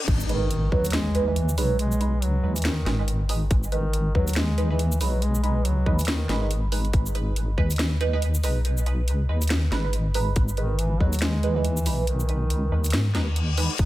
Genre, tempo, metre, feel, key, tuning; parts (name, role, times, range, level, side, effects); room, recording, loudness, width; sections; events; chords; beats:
deep dubstep; 140 BPM; 4/4; swing 59% on 16ths, half-time; G# minor; A4 = 440 Hz
riser, reverse cymbal and impact; sound effects; 0.0-1.8, 13.1-13.8 s; -32 LUFS; left 3 dB
deep soft wobble bass; bass; 0.1-13.9 s; G#1 to G#2; -24 LUFS; equal; chorus
electronic kick drum; drums; 0.1-0.8, 3.5-7.7, 10.4-11.1, 13.8-13.9 s; -22 LUFS; equal
garage drum kit; drums; 0.1-13.9 s; crash cymbal, hi-hat, shaker, snare drum; -30 LUFS; equal; high-pass filter on hats, high-pass filter on snare, high-pass filter on perc, high-pass filter on cymbals
mellow duduk; melody; 0.3-6.7, 10.6-13.3 s; D#3 to G#3; -30 LUFS; equal; dub echo
filtered dub chord stab; stabs; 0.3-13.7 s; G#3 to B4; -30 LUFS; right 4 dB; phaser, lush chorus, cassette tape, dub echo
little or no reverb; high-pass filter; -21 LUFS; side -16 dB against mid
0.1-13.9 A section
drop 0.1-13.9; impact 0.1-1.8; reverse cymbal 13.1-13.8
0.1 G#m
| 0.08 0.51 0.94 1.36 | 1.79 2.22 2.65 3.08 | 3.51 3.94 4.36 4.79 | 5.22 5.65 6.08 6.51 | 6.93 7.36 7.79 8.22 | 8.65 9.08 9.51 9.94 | 10.36 10.79 11.22 11.65 | 12.08 12.51 12.94 13.36 | 13.79